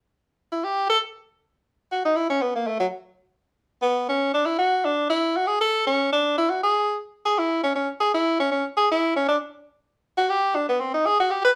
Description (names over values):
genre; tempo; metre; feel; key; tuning
jazz; 236 BPM; 4/4; swing 59% on 8ths; unclear; A4 = 440 Hz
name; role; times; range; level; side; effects
clear tenor saxophone; solo; 0.5-11.5 s; F#3 to B4; -22 LUFS; equal; none
room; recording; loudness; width
moderate studio reverb, RT60 0.6 s; heard from further back in the room; -23 LUFS; mono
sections
0.0-1.1 A section; 1.1-9.3 A section; 9.3-11.6 A section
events
tenor saxophone solo 0.0-1.1, 1.1-11.6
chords
none